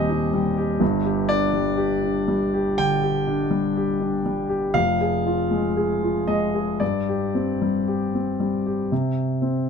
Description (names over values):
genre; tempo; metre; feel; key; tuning
neoclassical minimalist piano; 56-63 BPM; 4/4; rubato; unclear; A4 = 441 Hz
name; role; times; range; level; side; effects
warm concert grand piano; solo; 0.0-9.7 s; F1 to Ab5; -20 LUFS; left 1 dB; none
room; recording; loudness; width
light reverb; dark, warm production; -20 LUFS; side -6 dB against mid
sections
0.0-8.9 A section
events
none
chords
0.0 Cm/Eb; 0.8 G5; 4.7 Fm; 6.8 Gsus4; 8.9 N.C.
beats
| 0.81 1.77 2.78 3.76 | 4.75 5.76 6.81 7.88 | 8.91